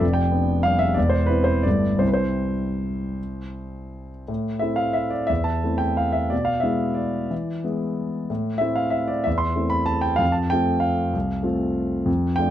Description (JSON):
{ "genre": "classical, piano waltz", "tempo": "150-202 BPM", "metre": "3/4", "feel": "rubato", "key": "C major, A minor from 4.3 s", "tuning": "A4 = 440 Hz", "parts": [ { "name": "warm concert grand piano", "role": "solo", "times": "0.0-12.5 s", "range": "E1 to C6", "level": "-20 LUFS", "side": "equal", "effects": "none" } ], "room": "light reverb", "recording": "dark, warm production", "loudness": "-20 LUFS", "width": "side -11 dB against mid", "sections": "0.0-4.3 A section; 4.3-12.5 B section", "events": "none", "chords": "0.0 G7/F; 1.0 C/E; 1.6 G69; 2.0 C; 4.3 Am; 6.3 E7/B; 8.3 Am; 10.2 F" }